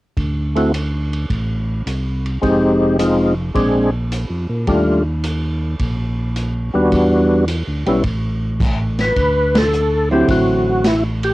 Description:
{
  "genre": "soul jazz organ trio",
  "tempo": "107 BPM",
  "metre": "4/4",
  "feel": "swing 69% on 8ths",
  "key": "unclear",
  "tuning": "A4 = 440 Hz",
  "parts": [
    { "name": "tonewheel organ", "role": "bass", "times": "0.2-11.3 s", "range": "F1 to Bb2", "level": "-20 LUFS", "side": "equal", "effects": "overdrive, chorus vibrato" },
    { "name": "vintage drum kit", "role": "drums", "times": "0.2-11.3 s", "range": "crash cymbal, hi-hat, kick drum, ride cymbal, snare drum", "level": "-24 LUFS", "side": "equal", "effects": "cassette tape" },
    { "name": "percussive tonewheel organ", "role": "melody", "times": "0.6-11.3 s", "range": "G3 to B4", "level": "-15 LUFS", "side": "equal", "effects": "slow rotary speaker, overdrive, chorus vibrato, cassette tape" },
    { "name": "hollow-body jazz guitar", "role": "accompaniment", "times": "10.1-10.8 s", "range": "D3 to E4", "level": "-16 LUFS", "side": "right 1 dB", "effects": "cassette tape" }
  ],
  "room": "light reverb",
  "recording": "home recording on cassette",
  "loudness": "-15 LUFS",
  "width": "side -18 dB against mid",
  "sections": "0.2-9.2 A section; 9.2-11.3 B section",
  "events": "band accent 9.4",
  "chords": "0.2 D7(no3); 2.4 Fm7; 3.5 Bb7; 4.7 Ebmaj9#11; 6.9 Em7; 8.0 Asus2; 9.2 D9"
}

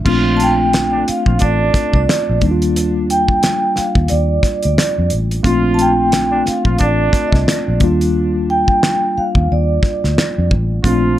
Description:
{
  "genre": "R&B, neo-soul",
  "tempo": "89 BPM",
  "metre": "4/4",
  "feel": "swing 58% on 16ths",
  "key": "unclear",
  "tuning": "A4 = 442 Hz",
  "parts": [
    { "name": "mellow tine electric piano", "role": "accompaniment", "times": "0.0-11.2 s", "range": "G3 to F4", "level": "-19 LUFS", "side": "left 1 dB", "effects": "medium stereo tremolo" },
    { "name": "dark horn section", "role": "stabs", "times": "0.1-11.2 s", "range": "D3 to F4", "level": "-24 LUFS", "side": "right 2 dB", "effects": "tape echo" },
    { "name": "vintage muted fingered electric bass", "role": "bass", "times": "0.1-11.2 s", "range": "A1 to F2", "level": "-17 LUFS", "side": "equal", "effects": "none" },
    { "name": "cloth-damped thuddy drum kit", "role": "drums", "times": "0.1-11.0 s", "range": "crash cymbal, finger snaps, hi-hat, kick drum, snare drum", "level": "-17 LUFS", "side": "equal", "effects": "none" },
    { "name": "vibraphone with soft mallets", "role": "melody", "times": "0.4-10.5 s", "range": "D5 to A5", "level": "-18 LUFS", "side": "right 2 dB", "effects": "none" }
  ],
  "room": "light reverb",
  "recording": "none",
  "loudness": "-12 LUFS",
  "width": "side -13 dB against mid",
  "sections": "0.1-11.2 A section",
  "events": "hi-hats muted 8.1-10.8",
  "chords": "0.1 Bbmaj9; 2.4 Ebmaj9; 5.5 Bbmaj9; 7.8 Ebmaj9"
}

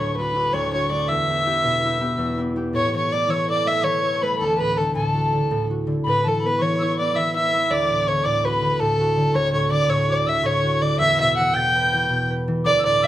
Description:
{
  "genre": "celtic folk, Celtic slip jig",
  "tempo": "109 BPM (dotted quarters)",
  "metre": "9/8",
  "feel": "straight",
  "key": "unclear",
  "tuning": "A4 = 438 Hz",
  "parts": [
    { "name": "dark fiddle", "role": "melody", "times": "0.0-13.1 s", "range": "A4 to G5", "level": "-21 LUFS", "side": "right 1 dB", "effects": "plate reverb" },
    { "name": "mellow tin whistle", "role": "second line", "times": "0.0-13.1 s", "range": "A5 to A6", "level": "-25 LUFS", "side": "left 3 dB", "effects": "none" },
    { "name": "concert harp", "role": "accompaniment", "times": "0.0-13.1 s", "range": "D2 to B4", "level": "-24 LUFS", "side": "equal", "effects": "none" }
  ],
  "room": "moderate studio reverb, RT60 0.5 s",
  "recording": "none",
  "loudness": "-18 LUFS",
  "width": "side -13 dB against mid",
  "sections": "0.0-2.7 A section; 2.7-13.1 B section",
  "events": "none",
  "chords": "0.0 D; 1.1 Em; 2.7 A; 4.4 D; 6.1 Asus2; 7.7 D; 11.0 Em"
}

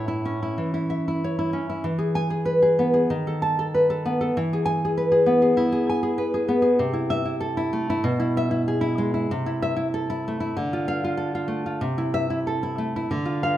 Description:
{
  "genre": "romantic piece for solo classical guitar",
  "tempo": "96 BPM",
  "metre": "4/4",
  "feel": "rubato",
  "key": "A minor from 6.8 s",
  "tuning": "A4 = 439 Hz",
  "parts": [
    { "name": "nylon-string guitar", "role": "solo", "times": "0.0-13.6 s", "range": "A2 to A5", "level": "-21 LUFS", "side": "equal", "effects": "none" }
  ],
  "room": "moderate recital hall reverb, RT60 1.7 s",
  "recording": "minimal, uncompressed stereo recording",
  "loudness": "-21 LUFS",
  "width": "side -13 dB against mid",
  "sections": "0.0-13.6 A section",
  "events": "none",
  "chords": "0.0 A; 1.8 E; 3.1 B7/D#; 4.3 E; 6.8 Am/C; 8.0 E/B; 9.3 Am/C; 10.6 Dm; 11.8 Am/C"
}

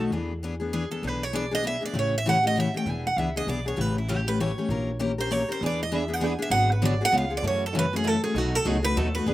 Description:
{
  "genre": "acoustic string swing (jazz manouche)",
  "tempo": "197 BPM",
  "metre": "3/4",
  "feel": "swing 59% on 8ths",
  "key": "E mixolydian",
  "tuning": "A4 = 440 Hz",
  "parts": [
    { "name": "picked steel-string acoustic guitar", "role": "melody", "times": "0.0-9.3 s", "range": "E4 to G#5", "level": "-27 LUFS", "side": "right 2 dB", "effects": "none" },
    { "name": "picked steel-string acoustic guitar", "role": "accompaniment", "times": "0.0-9.3 s", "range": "B2 to A#4", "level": "-28 LUFS", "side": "left 3 dB", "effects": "none" },
    { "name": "upright bass", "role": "bass", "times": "0.0-9.3 s", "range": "E1 to F#2", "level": "-30 LUFS", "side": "equal", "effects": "none" },
    { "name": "picked steel-string acoustic guitar", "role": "accompaniment", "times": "5.6-9.3 s", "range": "B2 to B4", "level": "-33 LUFS", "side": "right 5 dB", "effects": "slapback echo" }
  ],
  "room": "little or no reverb",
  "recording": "recorded outdoors, with no room sound",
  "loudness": "-23 LUFS",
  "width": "side -15 dB against mid",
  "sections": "0.1-9.3 A section",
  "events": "steel-string acoustic guitar solo 0.1-9.3",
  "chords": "0.1 E7; 2.0 A7; 2.9 E7; 3.8 A7; 4.7 A#dim7; 5.6 E7; 6.5 G#m7b5; 7.1 C#7; 7.4 F#m7; 8.4 B7"
}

